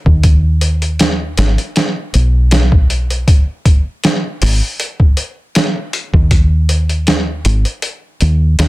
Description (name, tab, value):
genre	trip hop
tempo	79 BPM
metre	4/4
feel	swing 54% on 16ths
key	G# minor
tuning	A4 = 439 Hz
part	deep dub fingered electric bass	bass	0.1-8.7 s	G#1 to D#2	-12 LUFS	equal	none
part	trip hop sampler-style drum kit	drums	0.1-8.7 s	hi-hat, kick drum, snare drum	-12 LUFS	equal	overdrive
room	digital ambience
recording	dense, heavily limited modern master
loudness	-11 LUFS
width	side -19 dB against mid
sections	0.0-8.7 A section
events	kick drops out 7.8-8.7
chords	none